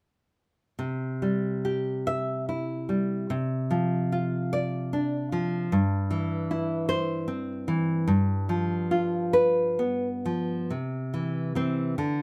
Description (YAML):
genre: romantic piece for solo classical guitar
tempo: 42-52 BPM (dotted quarters)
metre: 6/8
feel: rubato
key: C major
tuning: A4 = 440 Hz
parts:
  - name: nylon-string guitar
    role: solo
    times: 0.8-12.2 s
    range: G2 to E5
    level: -27 LUFS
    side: equal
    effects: none
room: light reverb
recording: none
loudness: -28 LUFS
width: mono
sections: 0.8-10.7 A section; 10.7-12.2 B section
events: none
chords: 0.8 C; 3.3 Dm7/C; 5.7 C/G; 8.1 G7; 10.7 C